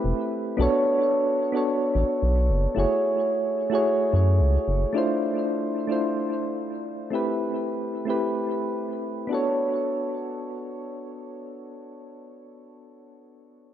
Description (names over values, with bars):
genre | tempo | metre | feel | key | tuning
sunset chillout | 110 BPM | 4/4 | straight | unclear | A4 = 440 Hz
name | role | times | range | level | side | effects
soft electric-piano-like synth keys | accompaniment | 0.0-13.7 s | A3 to C#5 | -24 LUFS | equal | chorus, auto-pan, tape echo
round analog bass | bass | 0.0-4.9 s | E1 to F#2 | -21 LUFS | equal | tube saturation
room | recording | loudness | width
wet spring reverb, RT60 2.1 s | echo-heavy mix | -22 LUFS | side -10 dB against mid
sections
0.6-9.3 A section; 9.3-13.7 B section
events
none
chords
0.0 Am9; 0.6 Bm9; 2.8 F#m9; 4.9 Dm9; 7.1 Am9; 9.3 Bm9